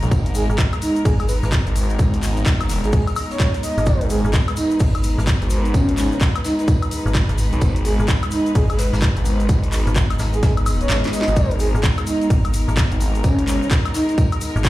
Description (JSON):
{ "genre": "bass house", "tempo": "128 BPM", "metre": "4/4", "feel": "swing 62% on 16ths", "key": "G# minor", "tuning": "A4 = 442 Hz", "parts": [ { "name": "rich studio string section", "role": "sustained chords", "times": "0.0-14.7 s", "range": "G#3 to B4", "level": "-28 LUFS", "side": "equal", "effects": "sidechain pumping, low-pass filter" }, { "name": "phased detuned saw bass", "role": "bass", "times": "0.0-13.6 s", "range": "G#1 to B1", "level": "-20 LUFS", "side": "equal", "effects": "phaser, overdrive, sidechain pumping" }, { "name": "house drum kit", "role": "drums", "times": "0.0-14.7 s", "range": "handclaps, hi-hat, snare drum, woodblock", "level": "-27 LUFS", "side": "left 1 dB", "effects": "overdrive" }, { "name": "tube shaker", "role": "percussion", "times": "0.0-14.7 s", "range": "none", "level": "-38 LUFS", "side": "left 5 dB", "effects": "none" }, { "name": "downlifter and swell", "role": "sound effects", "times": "0.0-0.1, 10.6-11.4 s", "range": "none", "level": "-32 LUFS", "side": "left 5 dB", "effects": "none" }, { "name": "electronic kick drum", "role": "drums", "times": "0.1-14.7 s", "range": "none", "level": "-18 LUFS", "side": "equal", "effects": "none" }, { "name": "vintage brush drum kit", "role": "drums", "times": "0.1-14.7 s", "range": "hi-hat, snare drum, tambourine", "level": "-37 LUFS", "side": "equal", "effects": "sidechain pumping on hats, high-pass filter on hats, high-pass filter on snare, sidechain pumping on perc, high-pass filter on perc, high-pass filter on room" }, { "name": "breathy flute-like synth lead", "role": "melody", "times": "0.4-14.1 s", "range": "C#4 to D#5", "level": "-24 LUFS", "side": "right 1 dB", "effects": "chorus, cassette tape, ping-pong delay" }, { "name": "metallic FM bass", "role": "bass", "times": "0.5-14.7 s", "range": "G#1", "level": "-20 LUFS", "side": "equal", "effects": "sidechain pumping" } ], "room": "little or no reverb", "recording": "played on a big sound system in a bare room, large studio reverb", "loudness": "-16 LUFS", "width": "side -16 dB against mid", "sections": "0.0-14.7 A section", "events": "swell 10.6-11.4; kick drops out 10.9-11.4; drum fill 10.9-11.4", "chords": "0.0 G#madd9", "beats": "| 0.12 0.58 1.05 1.52 | 1.99 2.46 2.93 3.40 | 3.87 4.33 4.80 5.27 | 5.74 6.21 6.68 7.15 | 7.62 8.09 8.55 9.02 | 9.49 9.96 10.43 10.90 | 11.37 11.84 12.30 12.77 | 13.24 13.71 14.18 14.65" }